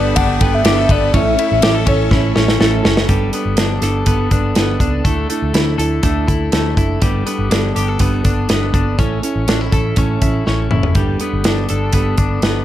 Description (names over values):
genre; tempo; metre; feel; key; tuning
jangly indie pop; 122 BPM; 4/4; straight; unclear; A4 = 439 Hz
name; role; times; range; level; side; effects
warbly nostalgic lead; melody; 0.0-2.3 s; C#5 to G5; -18 LUFS; left 1 dB; chorus, slapback echo, plate reverb
fingerpicked plugged-in steel-string acoustic guitar; accompaniment; 0.0-12.6 s; A2 to A4; -22 LUFS; right 6 dB; none
warbly lo-fi synth keys; accompaniment; 0.0-3.1 s; A3 to A4; -26 LUFS; left 1 dB; none
soft string machine; sustained chords; 0.0-3.1 s; A4 to C#6; -28 LUFS; equal; ensemble chorus, plate reverb
twelve-string electric guitar; arpeggios; 0.0-12.6 s; G3 to A4; -21 LUFS; left 5 dB; tube saturation, slapback echo
vintage muted picked electric bass; bass; 0.0-12.6 s; F#1 to D2; -19 LUFS; equal; none
modern studio drum kit; drums; 0.2-12.5 s; hi-hat, kick drum, ride cymbal, snare drum, toms; -17 LUFS; equal; none
room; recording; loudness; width
light reverb; none; -13 LUFS; side -12 dB against mid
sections
0.0-3.1 A section; 3.1-12.6 B section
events
drum fill 2.1-3.1, 10.5-11.0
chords
0.0 Gadd9; 1.1 A; 3.1 Gadd9; 5.1 Dsus2; 7.0 Gadd9; 9.0 A; 11.0 Gadd9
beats
0.18 0.66 | 1.15 1.63 2.12 2.61 | 3.09 3.58 4.07 4.57 | 5.06 5.55 6.04 6.53 | 7.02 7.52 8.01 8.50 | 8.99 9.48 9.97 10.46 | 10.96 11.45 11.94 12.43